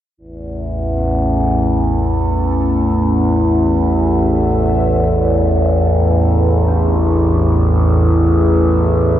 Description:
dark ambient drone; free time; A4 = 440 Hz
overtone-sweeping drone; drone; 0.4-9.2 s; A1 to E2; -12 LUFS; equal; chorus, built-in reverb
sweeping resonant pad; sustained chords; 0.8-9.2 s; A4 to E5; -29 LUFS; right 1 dB; chorus
gamelan-type bronze metallophone; arpeggios; 1.0-9.2 s; B3 to D4; -37 LUFS; left 2 dB
wet cathedral reverb, RT60 6.6 s; worn, warbling old tape, cassette tape, warbly pitch drift; -12 LUFS; side -11 dB against mid
0.2-9.2 A section
fade-in on analog synth pad 0.2-9.2
0.2 A5
free time

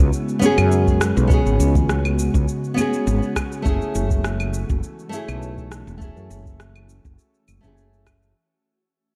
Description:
sunset chillout; 102 BPM; 4/4; swing 53% on 16ths; F# minor; A4 = 440 Hz
nylon-string guitar; accompaniment; 0.0-8.3 s; A3 to G#4; -26 LUFS; equal; digital delay, shimmer reverb
ethereal airy pad; sustained chords; 0.0-8.3 s; C#3 to F#4; -29 LUFS; equal; ensemble chorus, built-in reverb, shimmer reverb
woody fretless electric bass; bass; 0.0-8.3 s; E1 to F#2; -23 LUFS; equal; analog chorus
electronic shaker, claves and rim click; drums; 0.1-8.3 s; -30 LUFS; equal
congas; percussion; 0.4-2.9 s; -31 LUFS; equal
electronic kick drum; drums; 0.9-8.2 s; -22 LUFS; equal
light reverb; dark, warm production; -20 LUFS; mono
0.0-8.4 A section
fade-out 0.0-8.4
0.0 C#7sus4; 3.7 F#m7
0.12 0.71 | 1.30 1.89 2.48 3.06 | 3.65 4.24 4.83 5.42 | 6.01 6.59 7.18 7.77

